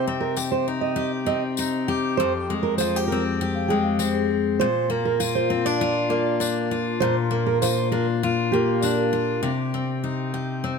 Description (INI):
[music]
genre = acoustic pop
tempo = 99 BPM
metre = 4/4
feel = straight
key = unclear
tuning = A4 = 440 Hz
[part]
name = picked steel-string acoustic guitar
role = accompaniment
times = 0.0-10.8 s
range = F2 to G4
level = -22 LUFS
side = left 3 dB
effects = none
[part]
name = fingerpicked steel-string acoustic guitar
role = arpeggios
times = 0.0-8.9 s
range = G4 to Eb5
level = -26 LUFS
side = right 6 dB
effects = none
[part]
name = tambourine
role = percussion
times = 0.4-9.0 s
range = none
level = -32 LUFS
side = left 8 dB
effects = none
[part]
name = vibraphone with soft mallets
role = second line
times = 3.5-4.6, 8.7-9.4 s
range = Ab4 to G5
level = -29 LUFS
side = left 3 dB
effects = none
[sound]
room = light reverb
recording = none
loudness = -21 LUFS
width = side -5 dB against mid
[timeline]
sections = 0.0-9.4 A section; 9.4-10.8 B section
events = none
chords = 0.0 Cm; 2.2 Fmadd9; 4.6 Bb; 9.4 Cm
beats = 0.36 0.97 1.57 | 2.18 2.78 3.38 3.99 | 4.59 5.20 5.80 6.41 | 7.01 7.61 8.22 8.82 | 9.43 10.03 10.64